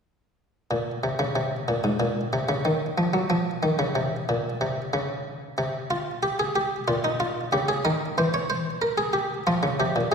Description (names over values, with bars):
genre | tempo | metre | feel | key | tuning
classical, baroque-style 3-part fugue for harpsichord | 92 BPM | 4/4 | straight | unclear | A4 = 440 Hz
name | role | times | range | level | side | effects
buff-stop harpsichord | solo | 0.7-10.1 s | Ab2 to Db5 | -23 LUFS | equal | none
room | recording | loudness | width
wet concert hall reverb, RT60 1.9 s | heard from further back in the room | -23 LUFS | side -6 dB against mid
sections
0.4-10.1 A section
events
none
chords
0.4 N.C.; 5.6 F5/C; 6.9 Gm7b5/Bb; 8.2 C7/E; 9.5 F5